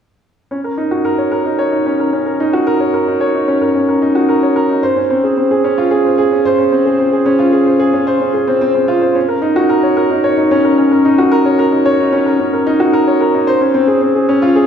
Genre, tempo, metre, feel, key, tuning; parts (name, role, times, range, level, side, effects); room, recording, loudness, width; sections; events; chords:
electronica; 111 BPM; 4/4; straight; Eb dorian; A4 = 440 Hz
dark grand piano; riff; 0.5-14.7 s; C4 to Db5; -11 LUFS; equal; digital delay
wet recital hall reverb, RT60 1.4 s; -11 LUFS; side -8 dB against mid
0.5-9.2 A section; 9.2-14.7 B section